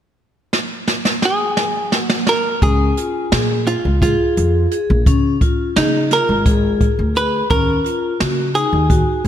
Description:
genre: progressive instrumental, band music in an uneven meter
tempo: 172 BPM (eighths)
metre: 7/8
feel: straight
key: Db mixolydian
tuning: A4 = 440 Hz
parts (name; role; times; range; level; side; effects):
- jazz brush drum kit; drums; 0.5-9.3 s; hi-hat, kick drum, snare drum; -18 LUFS; equal; none
- archtop guitar, miked and amplified; melody; 1.3-9.3 s; Eb4 to Cb5; -19 LUFS; right 1 dB; slapback echo
- vibraphone with medium hard mallets; arpeggios; 2.6-9.3 s; Db4 to Ab4; -21 LUFS; left 4 dB; digital delay
- upright bass; bass; 2.6-9.3 s; Ab1 to Db3; -18 LUFS; equal; none
room: moderate lush hall reverb, RT60 2.3 s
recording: big arena sound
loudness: -14 LUFS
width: side -10 dB against mid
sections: 0.2-2.6 A section; 2.6-9.3 B section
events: drum fill 0.5-2.6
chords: 0.2 N.C.; 2.6 Db; 7.5 Ebm7

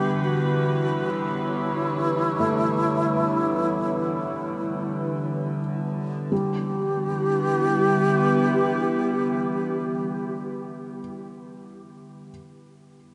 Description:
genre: ambient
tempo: free time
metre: none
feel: none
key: E dorian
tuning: A4 = 439 Hz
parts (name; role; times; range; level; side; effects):
- wooden-headed alto flute; melody; 0.0-10.5 s; E4 to G4; -28 LUFS; equal; analog delay
- evolving wavetable pad; sustained chords; 0.0-10.6 s; D3 to C#5; -28 LUFS; equal; chorus, built-in reverb
- felt-muted upright piano; arpeggios; 0.0-12.3 s; G3 to D4; -35 LUFS; equal; analog delay
- organ-like drone; drone; 0.0-10.6 s; E3 to B3; -38 LUFS; equal; none
room: wet cathedral reverb, RT60 6.6 s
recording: dreamy mix soaked in reverb, cassette tape, nothing above 10.9 kHz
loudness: -24 LUFS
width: mono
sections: 0.0-6.3 A section; 6.3-9.8 B section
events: none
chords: 0.0 Em7

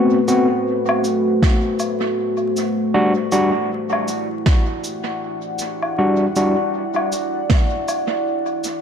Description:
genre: ambient dub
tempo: 79 BPM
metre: 4/4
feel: swing 59% on 16ths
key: unclear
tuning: A4 = 440 Hz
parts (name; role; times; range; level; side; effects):
- deep dark ambient pad; sustained chords; 0.0-8.8 s; A3 to G5; -21 LUFS; left 1 dB; chorus, built-in reverb
- overdriven tine electric piano; stabs; 0.0-6.5 s; G3 to F#4; -20 LUFS; equal; dub echo
- cabasa, woodblock and snare drum; drums; 0.3-8.8 s; none; -26 LUFS; right 1 dB; dub echo
- electronic kick drum; drums; 1.4-7.7 s; none; -16 LUFS; equal; none
room: moderate echo chamber reverb, RT60 1.9 s, small room ambience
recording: dark, warm production, vinyl crackle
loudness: -17 LUFS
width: side -7 dB against mid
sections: 0.0-8.8 A section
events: none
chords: 0.0 Am69; 2.9 Em9

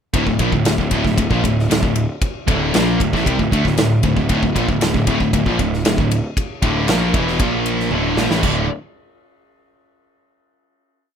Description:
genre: heavy metal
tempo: 116 BPM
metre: 4/4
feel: straight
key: D minor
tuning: A4 = 440 Hz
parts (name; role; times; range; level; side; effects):
- high-gain distorted guitar; riff; 0.1-8.6 s; D2 to Bb3; -24 LUFS; left 12 dB; distortion
- scooped high-gain guitar; riff; 0.1-8.6 s; D2 to Bb3; -22 LUFS; right 9 dB; distortion
- sludgy distorted guitar; riff; 0.1-8.6 s; D2 to Bb3; -21 LUFS; equal; overdrive
- fuzz picked electric bass; bass; 0.1-8.7 s; D1 to D2; -22 LUFS; equal; overdrive
- big rock drum kit; drums; 0.1-8.6 s; crash cymbal, kick drum, ride cymbal, snare drum, toms; -20 LUFS; equal; none
room: little or no reverb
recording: rough home demo mix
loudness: -15 LUFS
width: side -8 dB against mid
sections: 0.1-8.4 riff; 8.4-10.5 final chord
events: drum fill 7.9-8.4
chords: 0.1 Dm; 7.4 Bb5; 7.9 Dm; 8.4 D5

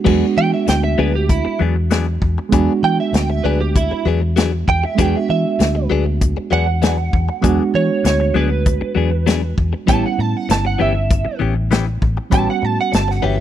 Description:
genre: straight-eighth soul blues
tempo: 98 BPM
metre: 4/4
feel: straight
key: E mixolydian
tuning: A4 = 440 Hz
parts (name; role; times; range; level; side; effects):
- reed electric piano; accompaniment; 0.0-13.4 s; G3 to F#4; -22 LUFS; right 6 dB; none
- direct-recorded clean electric guitar; stabs; 0.0-13.4 s; E3 to G#4; -22 LUFS; left 8 dB; phaser
- vintage muted fingered electric bass; bass; 0.1-13.4 s; G1 to E3; -19 LUFS; left 1 dB; none
- warm soul drum kit; drums; 0.1-13.2 s; crash cymbal, hi-hat, kick drum, snare drum; -18 LUFS; left 1 dB; none
- direct-recorded clean electric guitar; second line; 0.4-13.4 s; E4 to A5; -21 LUFS; right 4 dB; ensemble chorus
room: small room ambience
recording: none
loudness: -14 LUFS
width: side -11 dB against mid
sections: 0.1-13.4 A section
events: clean electric guitar solo 0.1-13.4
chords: 0.1 E9; 9.9 A9

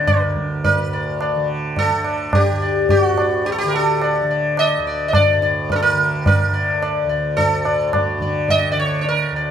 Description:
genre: indian classical, Hindustani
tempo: 107 BPM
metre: 5/4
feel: straight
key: unclear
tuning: A4 = 444 Hz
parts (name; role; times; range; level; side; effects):
- sitar; melody; 0.0-9.5 s; F#4 to Eb5; -18 LUFS; left 1 dB; none
- tanpura; drone; 0.0-9.5 s; D2 to D3; -24 LUFS; right 2 dB; none
- tabla; percussion; 0.1-9.2 s; none; -20 LUFS; right 1 dB; none
room: wet stone room reverb, RT60 1.2 s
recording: band playing live in one room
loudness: -16 LUFS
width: side -9 dB against mid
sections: 0.0-9.5 A section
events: none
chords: none

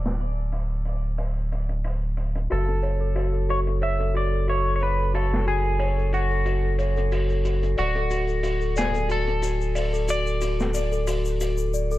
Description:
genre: trip hop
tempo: 91 BPM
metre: 4/4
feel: swing 54% on 16ths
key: F# minor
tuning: A4 = 440 Hz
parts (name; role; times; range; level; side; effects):
- clean electric guitar; melody; 0.0-11.4 s; F#4 to E5; -29 LUFS; equal; analog chorus, dub echo
- soft dub sub bass; bass; 0.0-12.0 s; D1 to F#1; -24 LUFS; equal; none
- egg shaker; percussion; 0.0-12.0 s; none; -41 LUFS; left 6 dB; none
- crunchy breakbeat drum kit; drums; 0.1-11.6 s; hi-hat, snare drum; -36 LUFS; equal; low-pass filter on hats, low-pass filter on snare, low-pass filter on room
- celesta; arpeggios; 2.5-12.0 s; F#4 to D5; -28 LUFS; left 3 dB; digital delay
room: studio ambience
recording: low-pass filter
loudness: -22 LUFS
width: side -16 dB against mid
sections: 0.0-12.0 A section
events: filter sweep 0.0-12.0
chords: 0.0 N.C.; 2.5 F#m; 7.8 D

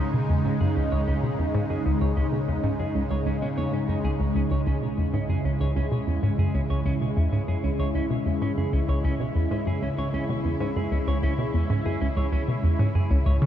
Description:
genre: ambient, sequencer-driven space music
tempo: 96 BPM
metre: 4/4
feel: straight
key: C# minor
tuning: A4 = 441 Hz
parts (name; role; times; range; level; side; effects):
- lush unison pad; sustained chords; 0.0-13.5 s; C#3 to E4; -27 LUFS; equal; chorus, phaser, shimmer reverb
- semi-hollow electric guitar; arpeggios; 0.0-13.5 s; C#3 to C#5; -34 LUFS; right 1 dB; auto-pan, ping-pong delay, shimmer reverb
- hollow square pluck; riff; 0.0-13.5 s; C#2 to C#3; -25 LUFS; equal; chorus, phaser, ping-pong delay
room: moderate huge ambient reverb, RT60 7.6 s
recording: dark, warm production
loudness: -23 LUFS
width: side -10 dB against mid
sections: 0.0-13.5 A section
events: none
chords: 0.0 C#madd9

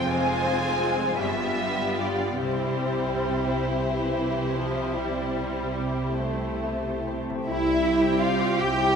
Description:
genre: classical, slow romantic movement for symphony orchestra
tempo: 45-55 BPM (dotted quarters)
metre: 12/8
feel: rubato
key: C major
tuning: A4 = 440 Hz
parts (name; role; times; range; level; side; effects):
- rich studio violin section; melody; 0.0-8.9 s; C5 to Ab5; -31 LUFS; equal; none
- warm studio violin section; second line; 0.0-9.0 s; E4 to G5; -29 LUFS; left 2 dB; none
- rich studio viola section; accompaniment; 0.0-8.9 s; E3 to G4; -31 LUFS; right 2 dB; none
- concert harp; arpeggios; 0.0-9.0 s; F2 to F5; -35 LUFS; left 7 dB; none
- rich studio double bass section; bass; 0.0-9.0 s; F1 to C2; -35 LUFS; right 2 dB; none
- warm studio cello section; bass; 0.0-9.0 s; F2 to G4; -28 LUFS; right 1 dB; none
- mellow French horn section; sustained chords; 7.5-9.0 s; G3 to E4; -29 LUFS; right 1 dB; none
room: wet scoring stage reverb, RT60 1.9 s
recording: none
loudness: -23 LUFS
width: side -6 dB against mid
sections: 0.0-7.5 A section; 7.5-9.0 A section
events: none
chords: 0.1 Fm; 1.2 G7; 2.4 C

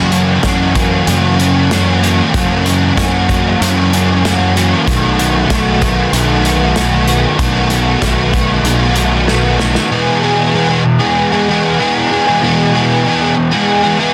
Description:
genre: rock, shoegaze and dream pop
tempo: 95 BPM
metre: 4/4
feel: straight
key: E major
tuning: A4 = 435 Hz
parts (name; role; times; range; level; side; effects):
- crunchy overdriven guitar; riff; 0.0-14.1 s; E2 to G#4; -14 LUFS; equal; analog chorus
- growling picked electric bass; bass; 0.0-9.8 s; B1 to F#2; -18 LUFS; equal; overdrive
- loose indie drum kit; drums; 0.1-9.9 s; hi-hat, kick drum, snare drum; -21 LUFS; equal; none
room: small room reverb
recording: dense, heavily limited modern master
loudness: -13 LUFS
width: mono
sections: 0.0-9.9 A section; 9.9-14.1 B section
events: drum fill 9.3-9.9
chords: 0.0 F#7; 4.9 B7; 9.9 E

